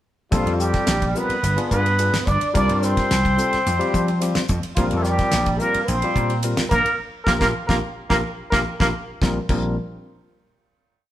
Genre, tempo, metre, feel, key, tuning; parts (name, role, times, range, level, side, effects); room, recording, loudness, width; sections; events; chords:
electric jazz fusion; 108 BPM; 4/4; straight; Bb major; A4 = 440 Hz
trumpet with plunger mute; melody; 0.3-8.9 s; F4 to D5; -23 LUFS; equal
breathy tenor saxophone; second line; 0.3-8.9 s; F3 to D4; -27 LUFS; right 4 dB
barky tine electric piano; accompaniment; 0.3-9.8 s; G3 to C5; -27 LUFS; left 3 dB
vintage slap bass; bass; 0.3-9.8 s; G1 to F3; -23 LUFS; equal
damped 70s drum kit; drums; 0.3-9.6 s; crash cymbal, hi-hat, kick drum, ride cymbal, snare drum; -25 LUFS; equal
moderate stone room reverb, RT60 1.3 s; band playing live in one room; -18 LUFS; side -13 dB against mid
0.3-9.2 A section; 9.2-11.1 final chord
band accent 7.0-9.2; tine electric piano fill 8.4-9.2; drum fill 8.9
0.3 Bbsus2; 1.4 G7b9; 2.6 C5; 3.7 F5; 4.8 Bbsus2